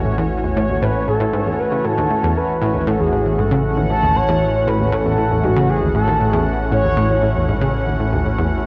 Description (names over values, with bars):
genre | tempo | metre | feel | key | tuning
ambient, sequencer-driven space music | 117 BPM | 4/4 | straight | A lydian | A4 = 437 Hz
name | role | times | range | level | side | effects
sweeping resonant pad | sustained chords | 0.0-8.7 s | E3 to F#5 | -25 LUFS | equal | chorus
fat analog bass | bass | 0.0-8.7 s | A1 | -26 LUFS | equal | none
analog pluck | riff | 0.1-8.5 s | D#2 to C#3 | -22 LUFS | equal | chorus, analog delay
expressive portamento lead | melody | 0.6-7.7 s | F#4 to C#5 | -23 LUFS | equal | subtle chorus, analog delay
room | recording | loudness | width
wet plate reverb, RT60 3.7 s | worn, warbling old tape, cassette tape, warbly pitch drift | -18 LUFS | mono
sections
0.0-8.7 A section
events
none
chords
0.0 A6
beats
0.31 0.82 1.33 | 1.85 2.36 2.87 3.39 | 3.90 4.41 4.92 5.44 | 5.95 6.46 6.98 7.49 | 8.00 8.51